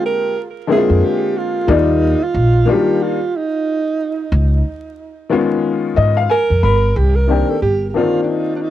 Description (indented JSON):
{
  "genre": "hip hop",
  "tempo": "91 BPM",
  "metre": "4/4",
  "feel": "swing 60% on 16ths",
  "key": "unclear",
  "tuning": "A4 = 444 Hz",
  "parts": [
    { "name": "breathy alto saxophone", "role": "melody", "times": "0.0-8.7 s", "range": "D4 to Bb4", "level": "-18 LUFS", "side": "right 4 dB", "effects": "cassette tape, tape echo" },
    { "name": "warm upright piano", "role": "accompaniment", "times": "0.0-8.7 s", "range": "D3 to Cb6", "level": "-16 LUFS", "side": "left 5 dB", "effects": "cassette tape" },
    { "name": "upright bass", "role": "bass", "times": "0.9-7.9 s", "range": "G1 to Ab2", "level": "-15 LUFS", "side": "equal", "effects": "none" }
  ],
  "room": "moderate booth ambience, RT60 0.3 s",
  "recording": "home recording on cassette, vinyl crackle",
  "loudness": "-13 LUFS",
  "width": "side -12 dB against mid",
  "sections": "0.0-7.0 A section; 7.0-8.7 B section",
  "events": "alto saxophone solo 0.0-7.0; upright piano fill 5.6-7.0",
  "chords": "0.0 Bb13; 1.7 Ebmaj9; 4.3 Db9; 7.0 Cm9",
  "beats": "0.37 1.02 | 1.68 2.34 3.00 3.66 | 4.32 4.98 5.64 6.30 | 6.96 7.62 8.28"
}